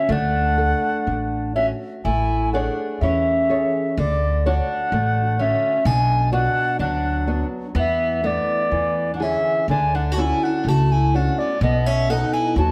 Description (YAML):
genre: fado-style ballad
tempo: 62 BPM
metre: 2/4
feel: rubato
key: A major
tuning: A4 = 440 Hz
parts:
  - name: baroque flute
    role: melody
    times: 0.0-12.7 s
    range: D5 to A5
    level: -24 LUFS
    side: equal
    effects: none
  - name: fingerpicked twelve-string acoustic guitar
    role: second line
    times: 0.0-12.7 s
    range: A3 to F#4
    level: -30 LUFS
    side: equal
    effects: none
  - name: nylon-string guitar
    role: accompaniment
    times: 0.0-12.7 s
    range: B2 to C#5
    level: -29 LUFS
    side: equal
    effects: none
  - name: upright bass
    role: bass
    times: 0.1-12.7 s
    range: A1 to E2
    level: -24 LUFS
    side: equal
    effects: none
room: moderate recital hall reverb, RT60 1.7 s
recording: none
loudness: -21 LUFS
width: mono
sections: 0.0-2.0 A section; 2.0-12.7 B section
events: none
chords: 0.0 D; 2.0 Amaj7; 4.0 Dmaj7; 5.9 Bm; 7.8 E7sus4; 8.7 E7; 9.7 Dmaj7; 11.6 B7